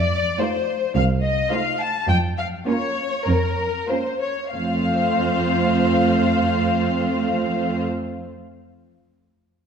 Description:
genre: quick classical-period movement for string orchestra.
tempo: 91-109 BPM.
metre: 4/4.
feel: rubato.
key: F major.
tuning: A4 = 440 Hz.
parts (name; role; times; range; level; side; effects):
rich symphonic violin section; melody; 0.0-7.8 s; Bb4 to A5; -24 LUFS; left 4 dB; none.
rich studio cello section; bass; 0.0-7.8 s; C2 to F2; -23 LUFS; right 2 dB; none.
rich symphonic violin section; second line; 0.4-7.8 s; F4 to C5; -26 LUFS; left 1 dB; none.
warm symphonic viola section; accompaniment; 0.4-7.8 s; A3 to Eb4; -24 LUFS; right 4 dB; none.
room: wet scoring stage reverb, RT60 1.7 s.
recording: dark, warm production.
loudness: -19 LUFS.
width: side -7 dB against mid.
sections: 0.0-4.5 A section; 4.5-7.1 B section.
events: slowing down 0.0-4.5.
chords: 0.0 F7; 2.1 Bbm/F; 4.5 F.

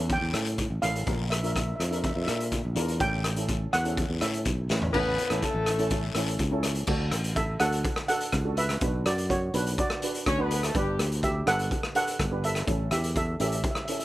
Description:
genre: calypso.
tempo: 124 BPM.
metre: 4/4.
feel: straight.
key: unclear.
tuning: A4 = 440 Hz.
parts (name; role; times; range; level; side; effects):
steel pan; accompaniment; 0.0-14.0 s; C#4 to B4; -35 LUFS; right 1 dB; slapback echo.
sustaining fretless electric bass; bass; 0.0-13.6 s; G1 to Bb2; -29 LUFS; equal; none.
steel pan; melody; 0.1-14.0 s; D4 to G5; -30 LUFS; right 2 dB; none.
raw garage drum kit; drums; 0.1-14.0 s; crash cymbal, hi-hat, kick drum, rim click, snare drum, toms; -30 LUFS; equal; none.
guiro; percussion; 0.1-6.8 s; none; -39 LUFS; left 5 dB; none.
dark horn section; second line; 4.9-6.4, 10.3-11.1 s; G3 to C#5; -29 LUFS; left 2 dB; slapback echo.
room: little or no reverb.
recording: none.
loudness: -25 LUFS.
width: side -16 dB against mid.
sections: 0.0-4.9 A section; 4.9-6.9 B section; 6.9-14.0 C section.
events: steel pan solo 0.0-4.9; drum fill 4.7.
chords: 0.0 A; 1.1 Bb; 3.0 Aadd9; 6.9 D; 8.8 Bm; 10.7 G; 12.7 A.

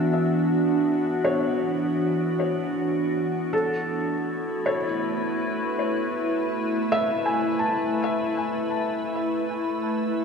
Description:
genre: ambient.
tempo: 53 BPM.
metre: 3/4.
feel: straight.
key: A major.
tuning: A4 = 439 Hz.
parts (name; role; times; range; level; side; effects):
glassy FM pad; sustained chords; 0.0-10.2 s; E3 to B4; -24 LUFS; equal; ensemble chorus, built-in reverb.
felt-muted upright piano; arpeggios; 0.0-10.2 s; A4 to A5; -29 LUFS; left 1 dB; ping-pong delay.
organ-like drone; drone; 0.0-10.2 s; A3 to E4; -34 LUFS; equal; ensemble chorus, built-in reverb.
room: wet plate reverb, RT60 2.6 s.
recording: dreamy mix soaked in reverb, cassette tape.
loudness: -22 LUFS.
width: side -5 dB against mid.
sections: 0.0-3.5 A section; 3.5-10.2 B section.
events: none.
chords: 0.0 Esus2; 3.5 Amaj7.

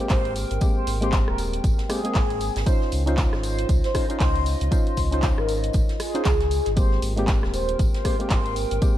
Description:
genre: deep house.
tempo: 117 BPM.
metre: 4/4.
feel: swing 59% on 16ths.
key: Ab major.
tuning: A4 = 440 Hz.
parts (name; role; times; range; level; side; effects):
percussive organ stab; stabs; 0.0-9.0 s; Ab3 to C5; -29 LUFS; equal; chorus, sidechain pumping, tape echo.
punchy analog drum machine; drums; 0.0-8.9 s; handclaps, hi-hat, rim click; -32 LUFS; right 1 dB; none.
warbly tape-like pad; texture; 0.0-9.0 s; F4 to G5; -34 LUFS; right 1 dB; chorus, built-in reverb, sidechain pumping.
mellow horn-like synth lead; melody; 0.1-8.5 s; Ab4 to C5; -29 LUFS; equal; phaser, wide subtle chorus.
sub bass with octave; bass; 0.1-8.8 s; Eb1 to Db2; -26 LUFS; equal; sidechain pumping.
electronic kick drum; drums; 0.1-8.9 s; none; -22 LUFS; equal; none.
jazz brush drum kit; drums; 0.1-9.0 s; hi-hat, snare drum, tambourine; -40 LUFS; equal; sidechain pumping on hats, high-pass filter on hats, high-pass filter on snare, sidechain pumping on perc, high-pass filter on perc, high-pass filter on room.
room: small room ambience.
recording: dark, warm production.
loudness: -20 LUFS.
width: side -13 dB against mid.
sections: 0.0-9.0 A section.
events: none.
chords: 0.0 Abmaj9; 2.7 Dbmaj9; 6.8 Abmaj9.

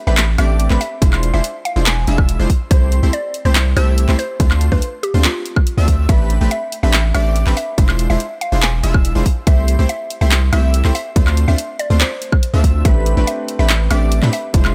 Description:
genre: future bass.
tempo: 142 BPM.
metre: 4/4.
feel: half-time.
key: A minor.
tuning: A4 = 440 Hz.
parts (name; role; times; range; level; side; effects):
mallet-like synth pluck; melody; 0.1-14.5 s; F4 to G#5; -27 LUFS; equal; chorus, sidechain pumping, delay.
airy dreamy lead; arpeggios; 0.1-14.7 s; B5 to E6; -34 LUFS; equal; chorus, sidechain pumping, delay.
supersaw stab; riff; 0.1-14.7 s; G#3 to E5; -26 LUFS; equal; cassette tape, sidechain pumping.
long sustained 808-style bass; bass; 0.1-14.7 s; E1 to A2; -17 LUFS; equal; sidechain pumping.
trap drum kit; drums; 0.2-14.7 s; handclaps, hi-hat, woodblock; -22 LUFS; equal; overdrive.
electronic kick drum; drums; 1.0-14.6 s; none; -16 LUFS; equal; overdrive.
warm concert grand piano; accompaniment; 12.8-14.7 s; G#3 to C5; -28 LUFS; equal; sidechain pumping, delay.
room: little or no reverb.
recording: none.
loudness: -16 LUFS.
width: mono.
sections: 0.0-14.7 A section.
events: none.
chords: 0.0 Am11; 1.0 E7b9b13; 2.7 C6; 4.4 Dm7; 6.1 Am11; 7.8 E7b9b13; 9.5 C6; 11.2 Dm7; 12.8 Am11.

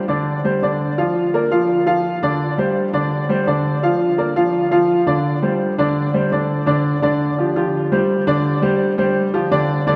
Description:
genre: latin.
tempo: 169 BPM.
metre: 4/4.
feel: straight.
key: unclear.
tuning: A4 = 439 Hz.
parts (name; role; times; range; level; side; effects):
clear baby grand piano; solo; 0.0-10.0 s; D3 to F5; -18 LUFS; equal; none.
room: wet cathedral reverb, RT60 4.3 s.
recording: recorded in a church or concert hall.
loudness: -18 LUFS.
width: mono.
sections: 0.0-6.7 A section; 6.7-10.0 B section.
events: none.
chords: 0.0 Csus2; 1.0 Dm; 2.4 Csus2; 3.8 Dm; 5.2 Csus2.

